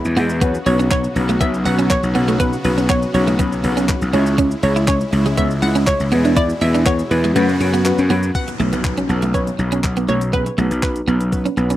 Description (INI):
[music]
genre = dance-pop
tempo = 121 BPM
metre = 4/4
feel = straight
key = unclear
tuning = A4 = 440 Hz
[part]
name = hollow square pluck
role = melody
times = 0.0-11.3 s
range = B4 to F#5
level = -23 LUFS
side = equal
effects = chorus, ping-pong delay
[part]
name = warm analog keys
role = accompaniment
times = 0.0-11.7 s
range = F#3 to C#5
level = -24 LUFS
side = left 2 dB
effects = chorus, sidechain pumping
[part]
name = supersaw chords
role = sustained chords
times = 0.0-8.3 s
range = B2 to F#4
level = -26 LUFS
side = left 1 dB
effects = sidechain pumping
[part]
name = crisp 8-bit digital drum machine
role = drums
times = 0.0-11.8 s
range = handclaps, hi-hat, kick drum, shaker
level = -22 LUFS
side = equal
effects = none
[part]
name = gritty slap bass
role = bass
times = 0.1-11.8 s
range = B1 to F#2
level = -18 LUFS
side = equal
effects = overdrive, sidechain pumping
[part]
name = clean electric guitar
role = riff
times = 0.2-11.8 s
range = G#3 to E4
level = -21 LUFS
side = right 3 dB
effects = ensemble chorus
[part]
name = downlifter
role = sound effects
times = 8.3-11.8 s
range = none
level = -33 LUFS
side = left 1 dB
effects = none
[sound]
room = little or no reverb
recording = rough home demo mix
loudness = -15 LUFS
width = side -14 dB against mid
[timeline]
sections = 0.0-8.3 A section; 8.3-11.8 B section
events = kick muted 7.4-8.3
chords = 0.4 Bsus2; 4.1 C#m; 6.1 E; 7.4 F#sus4; 8.3 Bsus2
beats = | 0.41 0.91 1.41 1.90 | 2.40 2.89 3.39 3.89 | 4.38 4.88 5.37 5.87 | 6.37 6.86 7.36 7.85 | 8.35 8.85 9.34 9.84 | 10.33 10.83 11.32